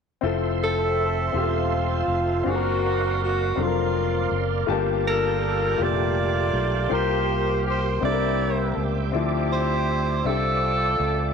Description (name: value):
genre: gospel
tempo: 54 BPM (dotted quarters)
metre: 6/8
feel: straight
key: F major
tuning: A4 = 440 Hz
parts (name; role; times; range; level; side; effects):
- clear baby grand piano; accompaniment; 0.2-11.3 s; G2 to A5; -27 LUFS; left 10 dB; none
- bright tonewheel organ; sustained chords; 0.2-11.3 s; G4 to D6; -31 LUFS; right 8 dB; fast rotary speaker, chorus vibrato
- fingered electric bass; bass; 0.2-11.3 s; E1 to D2; -26 LUFS; right 2 dB; none
- warm horn section; melody; 0.6-11.3 s; G3 to E5; -28 LUFS; left 2 dB; none
- warm tenor saxophone; melody; 0.6-11.3 s; F4 to D5; -27 LUFS; right 4 dB; none
room: moderate echo chamber reverb, RT60 1.4 s, studio reverb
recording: 1960s-style stereo with parts hard left and right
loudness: -21 LUFS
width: side -6 dB against mid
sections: 0.2-11.3 A section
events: none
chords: 0.2 Fmaj7; 2.5 D7alt/F#; 4.7 Gm9; 6.9 C7sus4; 8.0 C9; 9.1 Dm9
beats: | 0.23 1.34 | 2.45 3.57 | 4.68 5.79 | 6.91 8.02 | 9.14 10.25